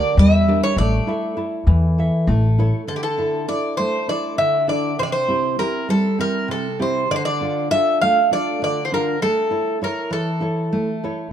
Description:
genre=greek folk, Greek bouzouki band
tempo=199 BPM (eighths)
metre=7/8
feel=straight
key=D minor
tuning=A4 = 440 Hz
part: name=Greek bouzouki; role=melody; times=0.0-11.0 s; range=G4 to F5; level=-20 LUFS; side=equal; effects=none
part: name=nylon-string guitar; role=accompaniment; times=0.0-11.3 s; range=C3 to E5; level=-22 LUFS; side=right 1 dB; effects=none
part: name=upright bass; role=bass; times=0.2-2.7 s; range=A1 to E2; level=-16 LUFS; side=left 1 dB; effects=none
room=moderate plate reverb, RT60 2.3 s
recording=dark, warm production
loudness=-17 LUFS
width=side -9 dB against mid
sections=0.0-2.9 A section; 2.9-11.3 B section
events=none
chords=0.0 Gm; 0.8 A5; 2.9 Dsus2; 5.0 C; 7.1 Dm; 9.2 A

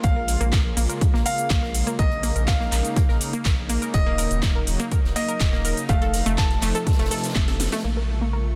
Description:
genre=progressive house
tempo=123 BPM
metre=4/4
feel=straight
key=Bb minor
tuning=A4 = 440 Hz
part: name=bright grand piano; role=melody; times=0.0-7.7 s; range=Eb5 to A5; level=-32 LUFS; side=equal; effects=sidechain pumping, digital delay
part: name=warm analog pad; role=sustained chords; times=0.0-8.6 s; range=C3 to F4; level=-35 LUFS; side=equal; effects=chorus, sidechain pumping
part: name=analog pluck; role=arpeggios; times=0.0-8.4 s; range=A3 to Bb4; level=-32 LUFS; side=equal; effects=chorus, sidechain pumping, tape echo
part: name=round analog bass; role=bass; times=0.0-8.6 s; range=Eb1 to Bb1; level=-28 LUFS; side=equal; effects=sidechain pumping
part: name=compact cocktail drum kit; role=drums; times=0.0-7.8 s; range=hi-hat, snare drum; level=-42 LUFS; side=equal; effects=none
part: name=electronic kick drum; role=drums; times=0.0-7.5 s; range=none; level=-24 LUFS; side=equal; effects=small room ambience
part: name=house drum kit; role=drums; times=0.0-8.6 s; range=handclaps, hi-hat, shaker, snare drum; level=-32 LUFS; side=equal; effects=low-pass filter on hats, small room ambience, low-pass filter on snare, low-pass filter on perc
part: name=twinkling granular texture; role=texture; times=8.1-8.6 s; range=Db6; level=-47 LUFS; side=equal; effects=built-in reverb, sidechain pumping
room=studio reverb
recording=dense, heavily limited modern master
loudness=-22 LUFS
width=mono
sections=0.0-7.8 A section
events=filter sweep on synth pluck 0.0-7.8; drum fill 7.4-7.8; band accent 7.7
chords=0.0 Bbm7; 3.9 Ebm7; 5.9 F7; 7.8 Bbm7

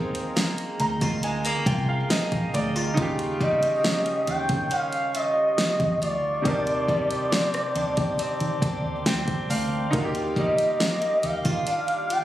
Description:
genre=contemporary R&B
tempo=69 BPM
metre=4/4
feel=straight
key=Eb major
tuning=A4 = 439 Hz
part: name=gliding portamento lead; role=melody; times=0.0-12.2 s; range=C5 to G5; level=-25 LUFS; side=equal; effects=chorus, digital delay
part: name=clear baby grand piano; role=accompaniment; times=0.0-12.2 s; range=C3 to Bb5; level=-30 LUFS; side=right 1 dB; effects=none
part: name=glass harmonica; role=sustained chords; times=0.0-12.2 s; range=G4 to D6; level=-36 LUFS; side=equal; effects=none
part: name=picked acoustic archtop guitar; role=arpeggios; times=0.0-12.2 s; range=G3 to F4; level=-33 LUFS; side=equal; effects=digital delay
part: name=vintage muted fingered electric bass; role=bass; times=0.0-12.2 s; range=Bb1 to Eb3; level=-29 LUFS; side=equal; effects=none
part: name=smooth R&B drum kit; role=drums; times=0.1-12.2 s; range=hi-hat, kick drum, rim click, snare drum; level=-27 LUFS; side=equal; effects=none
room=light reverb, small room ambience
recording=recorded on a phone in the room, studio reverb, compression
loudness=-22 LUFS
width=side -13 dB against mid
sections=0.0-12.2 A section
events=grand piano fill 0.4-3.0, 8.6-9.9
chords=0.0 Fm11; 3.0 Eb9; 6.5 Ebmaj13; 9.9 Ebmaj9

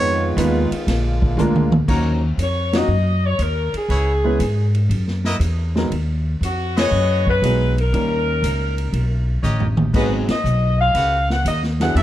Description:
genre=jazz, big band swing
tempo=119 BPM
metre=4/4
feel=swing 69% on 8ths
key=Eb minor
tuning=A4 = 440 Hz
part: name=warm baby grand piano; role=accompaniment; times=0.0-12.0 s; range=Gb3 to Cb5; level=-23 LUFS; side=right 1 dB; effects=none
part: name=warm saxophone section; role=sustained chords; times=0.0-1.9 s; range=D3 to F4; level=-27 LUFS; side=left 1 dB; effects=none
part: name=upright bass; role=bass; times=0.0-12.0 s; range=Ab1 to Ab2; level=-19 LUFS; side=equal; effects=none
part: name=swinging big-band drum kit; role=drums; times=0.4-12.0 s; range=crash cymbal, hi-hat, kick drum, ride cymbal, snare drum, toms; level=-24 LUFS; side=equal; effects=none
part: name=brilliant trumpet section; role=stabs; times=1.9-12.0 s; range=Eb4 to Gb5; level=-28 LUFS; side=equal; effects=none
part: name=clear saxophone section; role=melody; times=2.4-12.0 s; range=F#4 to Gb5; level=-21 LUFS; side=left 2 dB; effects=none
room=light reverb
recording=dark, warm production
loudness=-16 LUFS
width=side -13 dB against mid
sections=0.0-1.9 A section; 1.9-12.0 B section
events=drum fill 1.4-1.9, 9.4-9.9; band accent 2.6, 6.7, 10.2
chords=0.0 Fm7b5; 0.9 Bb7; 1.9 Ebm7; 3.9 Dbm7; 4.9 Gb7; 5.9 B6; 7.9 Eb7; 9.9 Abm7

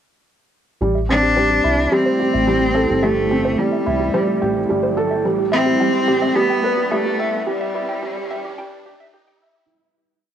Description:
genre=piano and strings electronica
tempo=108 BPM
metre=4/4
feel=straight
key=A minor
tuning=A4 = 439 Hz
part: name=granular cloud pad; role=sustained chords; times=1.8-9.7 s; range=G3 to G5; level=-27 LUFS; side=equal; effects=built-in reverb, cassette tape
part: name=warbly dusty pluck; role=arpeggios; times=0.8-9.7 s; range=G4 to G5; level=-27 LUFS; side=right 2 dB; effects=chorus, cassette tape, analog delay
part: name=felt-muted upright piano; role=riff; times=0.8-9.7 s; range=G3 to E5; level=-20 LUFS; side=right 2 dB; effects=cassette tape
part: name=round analog bass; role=bass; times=0.8-9.5 s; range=E1 to C2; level=-25 LUFS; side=left 1 dB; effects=none
part: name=riser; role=sound effects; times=3.8-9.7 s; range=none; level=-33 LUFS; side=right 1 dB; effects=none
part: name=clear cello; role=melody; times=1.1-9.1 s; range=G3 to D4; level=-19 LUFS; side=left 1 dB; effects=none
room=moderate small room reverb, RT60 0.5 s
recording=home recording on cassette, high-pass filter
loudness=-16 LUFS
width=side -9 dB against mid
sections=0.8-9.7 build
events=build-up 0.8-9.7; filter sweep on ambient pad 0.8-9.7; filter sweep on synth arpeggio sound 0.8-9.7; filter sweep 0.8-9.7; riser 3.8-9.7; fade-out 6.7-9.7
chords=0.8 Am7; 5.3 Em/A

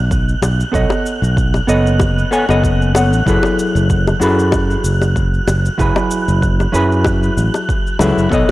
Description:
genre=sunset chillout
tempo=95 BPM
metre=4/4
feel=swing 55% on 16ths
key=F# dorian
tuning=A4 = 440 Hz
part: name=hollow-body jazz guitar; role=accompaniment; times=0.0-8.5 s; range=F#3 to G#5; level=-17 LUFS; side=moving between left 3 dB and right 4 dB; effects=auto-pan, tape echo
part: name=fingered electric bass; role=bass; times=0.0-8.4 s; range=F#1 to F#2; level=-15 LUFS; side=equal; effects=none
part: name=wind-like tuned noise texture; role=texture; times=0.0-8.5 s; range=F#6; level=-24 LUFS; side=right 1 dB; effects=built-in reverb
part: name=cabasa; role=drums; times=0.1-8.5 s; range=none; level=-32 LUFS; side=equal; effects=small room ambience
part: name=electronic kick drum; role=drums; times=0.1-8.5 s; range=none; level=-19 LUFS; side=equal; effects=small room ambience
part: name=bongos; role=percussion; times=0.4-8.5 s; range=none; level=-21 LUFS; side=left 2 dB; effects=none
room=light reverb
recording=worn, warbling old tape, cassette tape, warbly pitch drift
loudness=-12 LUFS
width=side -17 dB against mid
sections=0.0-8.5 A section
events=none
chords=0.0 B9; 3.3 F#m11

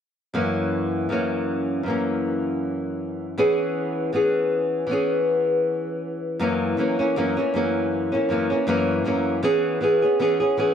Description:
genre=indie pop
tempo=79 BPM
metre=4/4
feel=swing 55% on 16ths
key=unclear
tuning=A4 = 440 Hz
part: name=flamenco guitar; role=solo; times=0.3-10.7 s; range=F#2 to G#4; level=-20 LUFS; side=equal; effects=wide subtle chorus, warbly pitch drift
room=moderate plate reverb, RT60 3.0 s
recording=dark, warm production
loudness=-21 LUFS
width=side -8 dB against mid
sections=0.3-6.4 A section; 6.4-10.7 B section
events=none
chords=0.3 F#7; 3.4 C#m7/E; 6.4 F#7; 9.4 C#m7/E

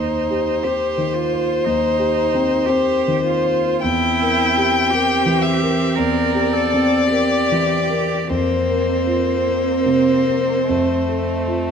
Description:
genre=classical, slow romantic movement for piano quartet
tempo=49-59 BPM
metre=4/4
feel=rubato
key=unclear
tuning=A4 = 441 Hz
part: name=warm violin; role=melody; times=0.0-11.7 s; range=C5 to G5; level=-20 LUFS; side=left 6 dB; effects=none
part: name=rich cello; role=second line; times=0.0-11.7 s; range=C4 to Bb4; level=-22 LUFS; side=right 12 dB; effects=none
part: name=warm concert grand piano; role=accompaniment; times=0.0-11.7 s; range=Eb2 to C5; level=-21 LUFS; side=equal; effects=none
part: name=rich violin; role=second line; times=0.6-11.7 s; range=A3 to C4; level=-25 LUFS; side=right 1 dB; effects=none
room=moderate scoring stage reverb, RT60 1.6 s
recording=close, detailed microphones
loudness=-16 LUFS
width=side -7 dB against mid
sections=0.0-11.7 A section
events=none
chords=0.0 Cm/Eb; 3.8 C7/E; 8.3 Fsus4; 10.7 F

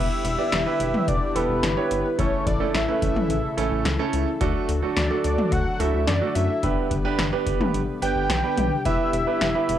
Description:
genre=synth-pop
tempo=108 BPM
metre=4/4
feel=straight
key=E dorian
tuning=A4 = 441 Hz
part: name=fat analog lead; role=melody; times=0.0-9.8 s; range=B4 to G5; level=-27 LUFS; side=left 1 dB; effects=phaser, tape echo
part: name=clear concert grand piano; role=accompaniment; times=0.0-9.8 s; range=A3 to D5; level=-27 LUFS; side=right 8 dB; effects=cassette tape
part: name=brassy analog pad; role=sustained chords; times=0.0-9.8 s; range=C#3 to B4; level=-30 LUFS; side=left 3 dB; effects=chorus, cassette tape
part: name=rubbery square bass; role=bass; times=0.0-9.8 s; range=E1 to F#2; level=-27 LUFS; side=left 1 dB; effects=none
part: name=electro analog drum machine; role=drums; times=0.2-9.8 s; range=hi-hat, kick drum, snare drum, toms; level=-26 LUFS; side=left 1 dB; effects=cassette tape
room=moderate small room reverb, RT60 0.5 s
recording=home recording on cassette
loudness=-20 LUFS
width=side -10 dB against mid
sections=0.0-9.8 A section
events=none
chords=0.0 Em7; 2.2 A; 4.4 D; 6.6 G; 8.9 Em7

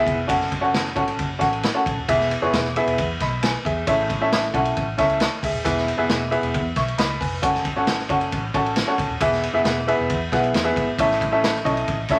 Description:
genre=uptempo 1960s-style soul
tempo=135 BPM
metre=4/4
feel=straight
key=E major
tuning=A4 = 440 Hz
part: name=bright upright piano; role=accompaniment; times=0.0-12.2 s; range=A2 to C#6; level=-23 LUFS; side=equal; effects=none
part: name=vintage muted fingered electric bass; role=bass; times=0.1-12.2 s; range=D#1 to E2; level=-32 LUFS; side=equal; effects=none
part: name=vintage drum kit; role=drums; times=0.1-12.2 s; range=hi-hat, kick drum, ride cymbal, snare drum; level=-27 LUFS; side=equal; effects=none
room=moderate studio reverb, RT60 0.8 s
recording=vinyl crackle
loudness=-22 LUFS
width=mono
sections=0.0-12.2 A section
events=none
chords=0.3 F#m; 2.1 E; 3.9 A; 5.6 E; 7.4 F#m; 9.2 E; 11.0 A

